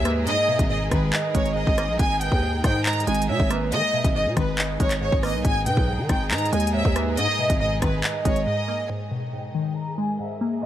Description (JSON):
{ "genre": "hip hop, drill", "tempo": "139 BPM", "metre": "4/4", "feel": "half-time", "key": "G# harmonic minor", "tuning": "A4 = 440 Hz", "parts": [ { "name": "warm studio violin section", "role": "melody", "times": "0.0-10.7 s", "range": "B4 to A#5", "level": "-26 LUFS", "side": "equal", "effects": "low-pass filter" }, { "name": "hollow clarinet-like synth lead", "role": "second line", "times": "0.0-8.9 s", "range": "B4 to E5", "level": "-32 LUFS", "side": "right 5 dB", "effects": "chorus, tape echo" }, { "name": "glassy wavetable pluck", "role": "accompaniment", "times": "0.0-10.7 s", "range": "G#2 to A#3", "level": "-28 LUFS", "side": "equal", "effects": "chorus, low-pass filter" }, { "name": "muted studio string section", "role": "sustained chords", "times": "0.0-10.7 s", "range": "G#2 to A#4", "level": "-33 LUFS", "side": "equal", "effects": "low-pass filter" }, { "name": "growling 808-style bass", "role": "bass", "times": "0.0-8.5 s", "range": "G#1 to D#3", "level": "-26 LUFS", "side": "equal", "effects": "none" }, { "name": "drill drum kit", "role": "drums", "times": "0.1-8.5 s", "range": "handclaps, hi-hat, kick drum, rim click", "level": "-24 LUFS", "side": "equal", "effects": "none" } ], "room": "digital ambience", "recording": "none", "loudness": "-20 LUFS", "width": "side -12 dB against mid", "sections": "0.0-8.9 A section; 8.9-10.7 B section", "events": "break 8.5-8.9; filter sweep 8.9-10.7", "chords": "0.0 G#madd9" }